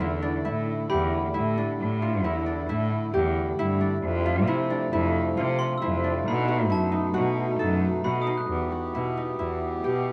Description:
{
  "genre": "contemporary instrumental, chamber music in an uneven meter",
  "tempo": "134 BPM",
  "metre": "5/4",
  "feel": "straight",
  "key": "unclear",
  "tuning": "A4 = 438 Hz",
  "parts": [
    { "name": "hand-pumped harmonium", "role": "sustained chords", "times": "0.0-10.1 s", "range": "B2 to G4", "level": "-33 LUFS", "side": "equal", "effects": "none" },
    { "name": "Celtic harp", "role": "arpeggios", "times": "0.0-10.1 s", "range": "C#4 to A4", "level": "-31 LUFS", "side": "equal", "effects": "none" },
    { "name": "rich cello", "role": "bass", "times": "0.0-10.1 s", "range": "E2 to C3", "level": "-29 LUFS", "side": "equal", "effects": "none" },
    { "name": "glockenspiel with brass mallets", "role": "texture", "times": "0.9-1.6, 5.6-9.0 s", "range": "A5 to F#6", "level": "-37 LUFS", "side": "equal", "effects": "none" }
  ],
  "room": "light reverb",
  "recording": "dark, warm production",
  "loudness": "-26 LUFS",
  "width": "mono",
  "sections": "0.0-8.5 A section; 8.5-10.1 B section",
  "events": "none",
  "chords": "0.0 Asus4; 4.0 F; 6.3 B7; 8.5 Em",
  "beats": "0.00 0.45 0.89 1.34 | 1.79 2.24 2.68 3.13 3.58 | 4.03 4.47 4.92 5.37 5.81 | 6.26 6.71 7.15 7.60 8.05 | 8.49 8.94 9.39 9.83"
}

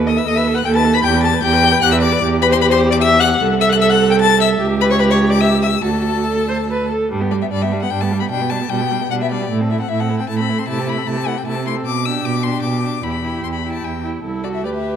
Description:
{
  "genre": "quick classical-period movement for string quartet",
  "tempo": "151 BPM",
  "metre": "3/4",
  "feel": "rubato",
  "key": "G major",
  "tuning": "A4 = 440 Hz",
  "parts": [
    { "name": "rich viola", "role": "accompaniment", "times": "0.0-15.0 s", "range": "G3 to C5", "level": "-21 LUFS", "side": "right 2 dB", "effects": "none" },
    { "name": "rich cello", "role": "bass", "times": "0.0-15.0 s", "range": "C2 to C3", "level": "-18 LUFS", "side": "right 3 dB", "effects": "none" },
    { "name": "rich violin", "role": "melody", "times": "0.1-15.0 s", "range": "D5 to B6", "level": "-21 LUFS", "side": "left 11 dB", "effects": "none" },
    { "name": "warm violin", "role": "second line", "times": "0.1-15.0 s", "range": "D4 to B5", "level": "-21 LUFS", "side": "left 3 dB", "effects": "none" }
  ],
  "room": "moderate concert hall reverb, RT60 1.8 s",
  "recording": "none",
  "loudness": "-14 LUFS",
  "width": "side -8 dB against mid",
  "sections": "0.0-7.1 A section; 7.1-15.0 B section",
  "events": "none",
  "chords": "0.0 B7/D#; 1.1 Em; 3.4 Am/C; 4.6 C#m7b5; 5.8 D; 7.1 G; 8.3 G/B; 9.5 Am; 10.7 Am/C; 11.8 G/B; 13.0 Em; 14.2 Am/C",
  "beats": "0.27 0.66 | 1.05 1.44 1.83 | 2.23 2.63 3.02 | 3.42 3.81 4.21 | 4.61 5.01 5.42 | 5.84 6.27 6.70 | 7.11 7.52 7.92 | 8.31 8.71 9.11 | 9.51 9.90 10.29 | 10.68 11.07 11.46 | 11.85 12.24 12.63 | 13.03 13.43 13.83 | 14.23 14.64"
}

